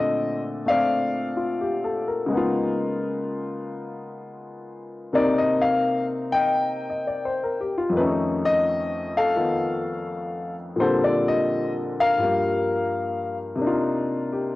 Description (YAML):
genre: solo jazz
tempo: 85 BPM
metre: 4/4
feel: swing 69% on 8ths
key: Bb major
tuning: A4 = 440 Hz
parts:
  - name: clear upright piano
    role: solo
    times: 0.0-14.6 s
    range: F2 to G5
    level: -22 LUFS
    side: left 2 dB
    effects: cassette tape
room: light reverb, studio ambience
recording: home recording on cassette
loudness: -21 LUFS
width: side -17 dB against mid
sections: 0.0-14.6 A section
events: none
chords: 0.0 Bbmaj9; 2.3 Db13; 5.1 Cm7; 8.0 Faug7; 10.8 Bbmaj13; 12.2 Gm7; 13.6 Cm11